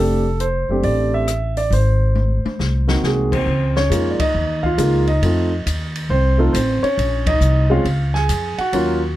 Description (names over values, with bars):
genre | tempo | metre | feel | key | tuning
jazz piano trio | 137 BPM | 4/4 | swing 66% on 8ths | Db major from 3.5 s | A4 = 442 Hz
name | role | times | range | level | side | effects
warm grand piano | melody | 0.0-9.2 s | Gb3 to Ab5 | -19 LUFS | right 1 dB | none
upright bass | bass | 0.0-9.2 s | F1 to F2 | -18 LUFS | equal | none
open jazz drum kit | drums | 0.4-8.9 s | crash cymbal, hi-hat, kick drum, ride cymbal, rim click, snare drum, toms | -26 LUFS | left 2 dB | none
room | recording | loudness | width
little or no reverb | close, detailed microphones | -16 LUFS | side -14 dB against mid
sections
0.0-3.5 A section; 3.5-9.2 B section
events
drum fill 2.2-3.0; band accent 4.1, 7.2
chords
0.0 F69; 1.7 Ab7; 3.5 Db6; 5.2 F7; 7.0 Bbm7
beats
0.40 0.84 1.28 | 1.72 2.16 2.59 3.03 | 3.47 3.91 4.35 4.79 | 5.22 5.66 6.10 6.54 | 6.98 7.42 7.85 8.29 | 8.73